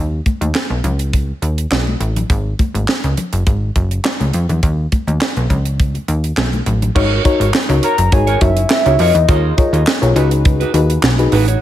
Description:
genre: early-eighties boogie funk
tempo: 103 BPM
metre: 4/4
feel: straight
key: G# minor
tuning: A4 = 439 Hz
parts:
  - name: plucky analog bass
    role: bass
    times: 0.0-11.6 s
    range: F#1 to E#2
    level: -16 LUFS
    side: equal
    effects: none
  - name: tight funk drum kit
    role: drums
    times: 0.3-11.6 s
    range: crash cymbal, handclaps, hi-hat, kick drum, snare drum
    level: -17 LUFS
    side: right 1 dB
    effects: gated reverb
  - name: congas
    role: percussion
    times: 0.3-6.9 s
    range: none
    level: -26 LUFS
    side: left 3 dB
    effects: none
  - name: FM electric piano with soft pad layer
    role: accompaniment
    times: 7.0-11.4 s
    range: D#4 to C#5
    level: -18 LUFS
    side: left 4 dB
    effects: chorus
  - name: mellow electric guitar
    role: riff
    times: 7.0-11.6 s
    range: D#4 to D#5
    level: -22 LUFS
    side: right 7 dB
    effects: wide subtle chorus
  - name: soft octave-layered synth lead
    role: melody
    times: 7.8-10.2 s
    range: D#5 to A#5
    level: -17 LUFS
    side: left 2 dB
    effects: chorus, phaser
room: small room ambience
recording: none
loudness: -13 LUFS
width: side -12 dB against mid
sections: 0.0-7.0 A section; 7.0-11.6 B section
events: none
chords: 0.0 B; 0.8 C#sus2; 2.3 G#7sus4; 4.6 B; 5.5 C#sus2; 7.0 G#9sus4; 9.3 D#9sus4; 10.2 C#9sus4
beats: 0.55 1.13 1.72 | 2.30 2.88 3.46 4.04 | 4.63 5.21 5.79 6.38 | 6.96 7.54 8.12 8.71 | 9.29 9.87 10.45 11.04

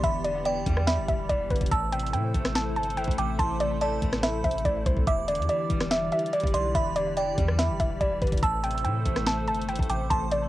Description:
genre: hip hop, trap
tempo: 143 BPM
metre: 4/4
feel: half-time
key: E minor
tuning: A4 = 440 Hz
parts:
  - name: soft round pluck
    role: melody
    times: 0.0-10.5 s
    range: B4 to A5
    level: -28 LUFS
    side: equal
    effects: chorus, low-pass filter, cassette tape, analog delay
  - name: glassy synth bell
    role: second line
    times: 0.0-10.5 s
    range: G5 to E6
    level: -34 LUFS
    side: right 8 dB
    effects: chorus, cassette tape, analog delay
  - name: clean electric guitar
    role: accompaniment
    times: 0.0-10.5 s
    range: E2 to A3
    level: -36 LUFS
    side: left 5 dB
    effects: low-pass filter, cassette tape
  - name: hollow soft pad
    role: sustained chords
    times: 0.0-10.5 s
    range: E3 to D5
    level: -34 LUFS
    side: equal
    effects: ensemble chorus, cassette tape
  - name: long sustained 808-style bass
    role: bass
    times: 0.0-10.5 s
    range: E1 to A2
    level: -31 LUFS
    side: equal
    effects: none
  - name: trap drum kit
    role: drums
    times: 0.0-10.4 s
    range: hi-hat, kick drum, rim click, snare drum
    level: -28 LUFS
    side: equal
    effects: cassette tape
room: light reverb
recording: home recording on cassette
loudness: -24 LUFS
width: side -15 dB against mid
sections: 0.0-10.5 A section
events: none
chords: 0.0 Em7; 1.7 Am; 5.1 Em7; 8.4 Am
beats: | 0.04 0.46 0.88 1.29 | 1.71 2.13 2.55 2.97 | 3.39 3.81 4.23 4.65 | 5.07 5.49 5.91 6.33 | 6.75 7.17 7.59 8.01 | 8.43 8.85 9.27 9.69 | 10.11

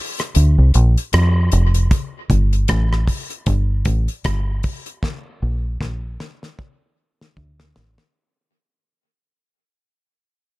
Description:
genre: dub reggae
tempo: 77 BPM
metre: 4/4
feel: swing 58% on 16ths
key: G minor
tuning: A4 = 440 Hz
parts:
  - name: damped 70s drum kit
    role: drums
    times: 0.2-8.1 s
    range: hi-hat, kick drum, rim click, snare drum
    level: -22 LUFS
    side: equal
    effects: none
  - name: deep dub fingered electric bass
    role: bass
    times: 0.4-8.0 s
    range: F1 to F2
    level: -15 LUFS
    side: equal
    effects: none
room: little or no reverb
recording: none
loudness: -16 LUFS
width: side -20 dB against mid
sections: 0.0-1.9 A section; 1.9-8.1 B section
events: break 0.0-1.9; fade-out 1.9-8.1; drum fill 5.0-8.1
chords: none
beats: 0.35 1.13 | 1.91 2.68 3.46 4.24 | 5.02 5.80 6.58 7.36

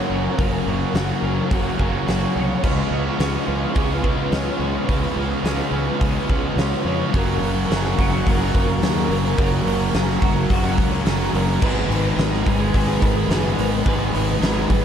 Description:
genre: rock, shoegaze and dream pop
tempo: 107 BPM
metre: 4/4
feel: straight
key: F# major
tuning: A4 = 441 Hz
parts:
  - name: ensemble organ-string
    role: sustained chords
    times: 0.0-14.8 s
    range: A#4 to D#6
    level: -31 LUFS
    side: equal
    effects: phaser, ensemble chorus
  - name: twelve-string electric guitar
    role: arpeggios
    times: 0.0-14.8 s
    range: F#4 to C#5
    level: -30 LUFS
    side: left 1 dB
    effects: ensemble chorus, slapback echo
  - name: biting overdriven guitar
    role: riff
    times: 0.0-14.8 s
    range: C#3 to B4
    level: -26 LUFS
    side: right 11 dB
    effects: reverse reverb
  - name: distorted electric guitar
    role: riff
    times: 0.0-14.8 s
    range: F#2 to C#4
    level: -28 LUFS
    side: right 2 dB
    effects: overdrive
  - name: thick fuzz guitar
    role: riff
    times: 0.0-14.8 s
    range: F#2 to C#4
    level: -25 LUFS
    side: left 9 dB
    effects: distortion, analog chorus
  - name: fuzz fingered electric bass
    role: bass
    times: 0.1-14.8 s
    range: F#1 to E#2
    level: -24 LUFS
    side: equal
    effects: overdrive
  - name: huge arena drum kit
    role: drums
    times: 0.4-14.8 s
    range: crash cymbal, hi-hat, kick drum, snare drum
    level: -23 LUFS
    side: equal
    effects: none
room: small room reverb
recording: dark, warm production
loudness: -18 LUFS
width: side -8 dB against mid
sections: 0.0-7.1 A section; 7.1-14.8 B section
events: none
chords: 0.0 F#maj7; 2.6 C#9; 7.1 F#maj7; 11.6 G#madd9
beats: | 0.39 0.95 1.51 2.07 | 2.63 3.20 3.76 4.32 | 4.88 5.45 6.01 6.57 | 7.13 7.69 8.25 8.81 | 9.37 9.93 10.49 11.05 | 11.61 12.17 12.73 13.29 | 13.85 14.41

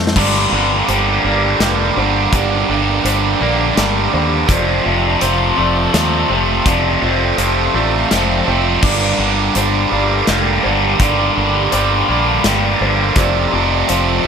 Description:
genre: post-rock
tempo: 83 BPM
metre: 3/4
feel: straight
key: G minor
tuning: A4 = 441 Hz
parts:
  - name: soft additive organ-like pad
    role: sustained chords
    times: 0.0-14.3 s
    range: F3 to C6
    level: -28 LUFS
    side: right 1 dB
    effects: ensemble chorus, built-in reverb
  - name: felt-muted upright piano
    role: arpeggios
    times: 0.0-14.2 s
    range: C5 to D5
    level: -26 LUFS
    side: right 5 dB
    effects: digital delay
  - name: twangy electric guitar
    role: arpeggios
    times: 0.0-14.3 s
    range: F2 to C4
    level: -24 LUFS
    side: left 2 dB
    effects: digital delay
  - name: fingered electric bass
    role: bass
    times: 0.0-14.3 s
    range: F1 to F2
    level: -20 LUFS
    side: equal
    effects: none
  - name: big rock drum kit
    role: drums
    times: 0.1-14.1 s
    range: crash cymbal, hi-hat, kick drum, snare drum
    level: -20 LUFS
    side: left 1 dB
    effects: none
  - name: distorted electric guitar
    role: riff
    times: 0.2-14.3 s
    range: F2 to D4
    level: -17 LUFS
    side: right 12 dB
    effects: overdrive
  - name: overdriven electric guitar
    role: riff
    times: 0.2-14.3 s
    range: F2 to G3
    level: -19 LUFS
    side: left 15 dB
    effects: phaser
room: moderate studio reverb, RT60 0.5 s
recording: none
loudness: -12 LUFS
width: side -6 dB against mid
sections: 0.2-14.3 A section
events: drum fill 0.0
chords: 0.2 Gm; 4.5 F; 8.8 Gm; 13.2 F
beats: | 0.16 0.88 1.60 | 2.33 3.05 3.77 | 4.50 5.22 5.94 | 6.66 7.39 8.11 | 8.83 9.55 10.28 | 11.00 11.72 12.44 | 13.17 13.89

